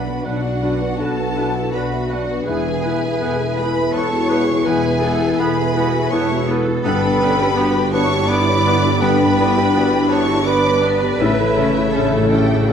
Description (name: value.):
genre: cinematic, emotional film score for orchestra.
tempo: 82 BPM.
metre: 3/4.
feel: rubato.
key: unclear.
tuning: A4 = 439 Hz.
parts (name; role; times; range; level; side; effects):
warm symphonic violin section; melody; 0.0-12.7 s; D5 to D6; -26 LUFS; left 2 dB; none.
mellow hollow concert flute; second line; 0.0-12.7 s; B4 to B5; -25 LUFS; equal; none.
warm clarinet; second line; 0.0-12.7 s; B3 to D4; -30 LUFS; equal; none.
warm oboe; second line; 0.0-12.7 s; A4 to B4; -31 LUFS; right 3 dB; none.
warm symphonic violin section; second line; 0.0-12.7 s; D4 to D5; -25 LUFS; left 2 dB; none.
rich studio viola section; accompaniment; 0.0-12.7 s; C#3 to G#4; -26 LUFS; equal; none.
warm concert grand piano; accompaniment; 0.0-12.7 s; B1 to E5; -22 LUFS; left 1 dB; none.
dark French horn section; sustained chords; 0.0-12.7 s; C#3 to E4; -25 LUFS; left 3 dB; none.
concert harp; arpeggios; 0.0-12.7 s; E2 to C#6; -26 LUFS; left 7 dB; none.
rich studio double bass section; bass; 0.0-12.7 s; E1 to B1; -24 LUFS; right 5 dB; none.
rich symphonic cello section; bass; 0.0-12.7 s; D4 to B4; -25 LUFS; right 4 dB; none.
timpani; percussion; 11.2-12.7 s; A2; -28 LUFS; right 1 dB; none.
room: moderate scoring stage reverb, RT60 1.6 s.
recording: none.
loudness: -15 LUFS.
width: side -8 dB against mid.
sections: 0.0-12.7 A section.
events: timpani fill 11.2-12.7.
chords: 0.0 Bm; 2.5 E; 6.9 G; 11.2 A.